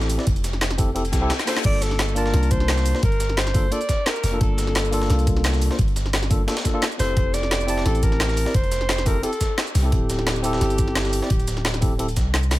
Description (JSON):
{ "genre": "liquid drum and bass", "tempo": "174 BPM", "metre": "4/4", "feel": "swing 53% on 16ths", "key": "unclear", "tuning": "A4 = 438 Hz", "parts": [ { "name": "tine electric piano", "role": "accompaniment", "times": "0.0-12.1 s", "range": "Bb3 to A5", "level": "-27 LUFS", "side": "left 1 dB", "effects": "digital delay" }, { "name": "long sustained 808-style bass", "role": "bass", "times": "0.0-12.6 s", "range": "D1 to C2", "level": "-23 LUFS", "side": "equal", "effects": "none" }, { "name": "breakbeat sampler-style drum kit", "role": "drums", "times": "0.0-12.6 s", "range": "hi-hat, snare drum", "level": "-31 LUFS", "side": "equal", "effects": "high-pass filter on snare, high-pass filter on hats, high-pass filter on room" }, { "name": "drum and bass drum kit", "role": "drums", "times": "0.0-12.6 s", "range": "crash cymbal, hi-hat, shaker, snare drum", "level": "-26 LUFS", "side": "equal", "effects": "overdrive" }, { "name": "electronic kick drum", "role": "drums", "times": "0.3-12.2 s", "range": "none", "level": "-22 LUFS", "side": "equal", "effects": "overdrive" }, { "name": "reverse cymbal", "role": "sound effects", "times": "1.1-1.6 s", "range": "none", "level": "-32 LUFS", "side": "left 7 dB", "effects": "none" }, { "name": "warm alto saxophone", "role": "melody", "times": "1.5-12.3 s", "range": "G4 to D5", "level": "-27 LUFS", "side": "equal", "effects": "ping-pong delay" } ], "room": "digital ambience", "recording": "none", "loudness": "-19 LUFS", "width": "side -17 dB against mid", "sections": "0.0-12.6 A section", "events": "reverse cymbal 1.1-1.6; drum fill 1.3-1.6; kick drops out 12.3", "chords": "0.0 Fmaj7; 9.9 D9sus4" }